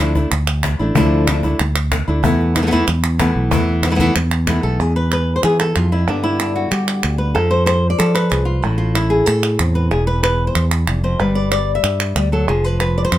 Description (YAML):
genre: flamenco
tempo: 187 BPM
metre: 4/4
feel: straight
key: unclear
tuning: A4 = 440 Hz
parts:
  - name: flamenco guitar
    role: melody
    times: 0.0-13.2 s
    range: E2 to E5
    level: -18 LUFS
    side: left 1 dB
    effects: plate reverb
  - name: fretless electric bass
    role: bass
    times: 0.0-13.2 s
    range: E1 to G3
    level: -18 LUFS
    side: equal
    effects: none
  - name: cajon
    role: percussion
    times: 0.2-4.6 s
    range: none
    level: -22 LUFS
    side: left 4 dB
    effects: none
  - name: palmas hand claps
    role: percussion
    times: 0.3-13.2 s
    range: none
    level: -22 LUFS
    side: right 5 dB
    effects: none
room: light reverb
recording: close, detailed microphones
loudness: -14 LUFS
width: side -13 dB against mid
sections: 0.0-4.8 A section; 4.8-13.2 B section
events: none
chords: 0.0 Dmadd9; 2.2 Esus4; 4.8 E; 6.1 G; 7.4 F; 8.6 Am; 9.9 E5; 11.2 G; 12.5 F5